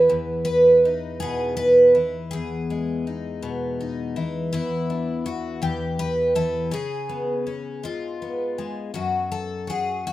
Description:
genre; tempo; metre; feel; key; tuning
folk, solo fingerstyle acoustic guitar; 54 BPM (dotted quarters); 6/8; straight; E major; A4 = 440 Hz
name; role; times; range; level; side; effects
picked twelve-string acoustic guitar; solo; 0.0-10.1 s; E2 to B4; -20 LUFS; equal; none
room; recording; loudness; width
light reverb; minimal, uncompressed stereo recording; -21 LUFS; side -15 dB against mid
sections
0.0-8.9 A section; 8.9-10.1 B section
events
none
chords
0.1 Emaj7; 4.5 Em11; 6.7 C#7; 8.9 F#5

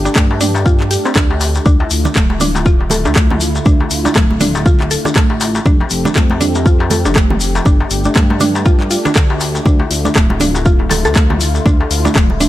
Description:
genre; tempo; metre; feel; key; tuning
afro house; 120 BPM; 4/4; swing 58% on 16ths; D minor; A4 = 439 Hz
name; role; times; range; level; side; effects
warm analog pad; sustained chords; 0.0-12.5 s; D3 to A4; -22 LUFS; left 1 dB; chorus, sidechain pumping
smooth synth bass; bass; 0.0-12.5 s; D1 to G2; -18 LUFS; equal; tube saturation, sidechain pumping
mallet-like synth pluck; arpeggios; 0.1-12.5 s; A3 to A4; -19 LUFS; equal; chorus, sidechain pumping, dub echo
darbuka; percussion; 0.1-12.4 s; none; -24 LUFS; left 4 dB; none
shekere; percussion; 0.1-12.5 s; none; -25 LUFS; left 3 dB; none
electronic kick drum; drums; 0.2-12.3 s; none; -12 LUFS; equal; overdrive
house drum kit; drums; 0.2-12.5 s; handclaps, hi-hat, rim click, toms; -19 LUFS; left 1 dB; overdrive
congas; percussion; 1.7-12.5 s; none; -22 LUFS; right 3 dB; none
room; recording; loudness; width
digital ambience; none; -10 LUFS; side -14 dB against mid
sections
0.0-12.5 A section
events
none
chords
0.0 Gsus2; 1.7 Dmadd9; 5.7 F; 7.7 Gsus2; 9.7 Dmadd9

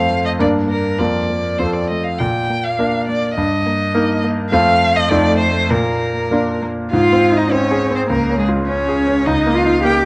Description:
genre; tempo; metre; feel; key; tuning
quick classical-period movement for piano trio; 102 BPM; 2/4; rubato; Bb major, Ab major from 6.9 s; A4 = 441 Hz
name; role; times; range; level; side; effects
rich violin; melody; 0.0-9.9 s; Ab4 to G5; -22 LUFS; equal; none
bright grand piano; accompaniment; 0.0-10.1 s; Db2 to C5; -20 LUFS; equal; none
rich cello; second line; 0.1-10.1 s; Ab3 to G4; -22 LUFS; equal; none
room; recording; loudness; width
moderate recital hall reverb, RT60 1.5 s; close, detailed microphones; -17 LUFS; mono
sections
0.0-6.9 A section; 6.9-10.1 B section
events
none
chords
0.4 Gm; 1.0 Bb/F; 1.6 F; 2.2 Bb; 3.4 Eb/G; 4.5 F; 5.1 F7; 5.7 Bb; 6.9 Ab; 8.1 Db; 9.3 Eb7/Db

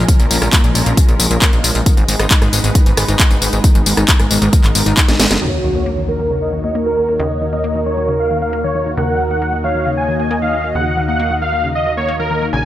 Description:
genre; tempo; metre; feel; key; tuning
uplifting trance; 135 BPM; 4/4; straight; Eb minor; A4 = 440 Hz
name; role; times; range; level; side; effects
lush unison pad; sustained chords; 0.0-12.7 s; Ab3 to Eb5; -24 LUFS; equal; chorus, phaser, sidechain pumping
wide unison pluck; arpeggios; 0.0-12.6 s; Db3 to Eb4; -22 LUFS; left 2 dB; sidechain pumping, digital delay
plucky analog bass; bass; 0.0-12.7 s; Gb1 to Eb2; -20 LUFS; equal; sidechain pumping
electronic kick drum; drums; 0.1-5.1 s; none; -12 LUFS; equal; none
house drum kit; drums; 0.1-5.4 s; handclaps, hi-hat, rim click, snare drum, tambourine; -16 LUFS; left 1 dB; low-pass filter on hats, low-pass filter on snare, low-pass filter on perc
supersaw chords; melody; 5.4-12.7 s; Bb4 to Ab5; -20 LUFS; equal; sidechain pumping, low-pass filter
warm velvety synth lead; second line; 5.4-12.4 s; Gb4 to F5; -21 LUFS; right 1 dB; chorus, digital delay
impact; sound effects; 5.4-7.2 s; none; -25 LUFS; equal; none
room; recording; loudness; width
light reverb; none; -12 LUFS; side -13 dB against mid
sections
0.0-5.4 A section; 5.4-12.7 B section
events
drum fill 5.1-5.4; band accent 5.3; impact 5.4-7.2; filter sweep on supersaw synth 5.4-12.7; filter sweep on synth arpeggio sound 5.4-12.7; filter sweep on analog synth pad 5.4-12.7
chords
0.0 Bbm7; 1.9 Abm; 5.4 Ebm7

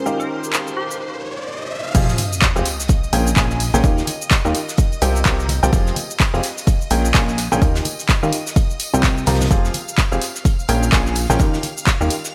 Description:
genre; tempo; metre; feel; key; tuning
piano house; 127 BPM; 4/4; swing 59% on 16ths; F minor; A4 = 440 Hz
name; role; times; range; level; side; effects
string machine, violins; sustained chords; 0.0-12.3 s; C5 to F6; -36 LUFS; equal; ensemble chorus, sidechain pumping
bright upright piano; riff; 0.0-12.1 s; Bb2 to Bb5; -25 LUFS; equal; sidechain pumping, digital delay
riser and sub drop; sound effects; 0.2-3.8 s; none; -29 LUFS; equal; none
warbly tape-like pad; texture; 0.0-1.0 s; Db4 to Bb4; -34 LUFS; equal; chorus, built-in reverb, sidechain pumping
punchy analog drum machine; drums; 0.1-12.3 s; crash cymbal, handclaps, hi-hat, shaker; -25 LUFS; equal; none
glassy wavetable pluck; melody; 0.2-1.0 s; G4 to Bb4; -34 LUFS; equal; chorus, digital delay
plucky analog bass; bass; 1.9-12.1 s; F1 to Eb2; -22 LUFS; equal; sidechain pumping
electronic kick drum; drums; 1.9-12.0 s; none; -19 LUFS; equal; none
loose indie drum kit; drums; 1.9-12.3 s; hi-hat, snare drum; -35 LUFS; equal; none
tambourine and congas; percussion; 1.9-12.3 s; none; -33 LUFS; equal; none
room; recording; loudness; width
light reverb, studio reverb; bright 1980s-style digital production; -18 LUFS; mono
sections
0.0-1.9 A section; 1.9-12.3 B section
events
riser 0.2-1.9; break 1.0-1.9; drop 1.9-12.3; impact 1.9-3.8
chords
0.1 Ebadd9; 1.0 N.C.; 1.9 Fmadd9; 2.7 Bbm7; 3.8 Ebadd9; 4.8 C7sus4; 5.7 Fmadd9; 6.4 Bbm7; 7.6 Ebadd9; 8.6 C7sus4; 9.5 Fmadd9; 10.2 Bbm7; 11.4 Ebadd9

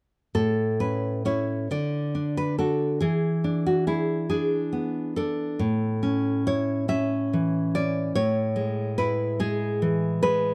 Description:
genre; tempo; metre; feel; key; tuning
romantic piece for solo classical guitar; 46 BPM (dotted quarters); 6/8; uneven beats, rubato; A major; A4 = 440 Hz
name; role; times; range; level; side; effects
nylon-string guitar; solo; 0.3-10.5 s; A2 to E5; -25 LUFS; equal; none
room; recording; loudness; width
small room reverb; dry, close 1970s-style studio recording; -26 LUFS; mono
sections
0.4-10.5 A section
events
none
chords
0.4 A; 1.7 D; 3.0 E7; 5.6 A; 8.2 E/A

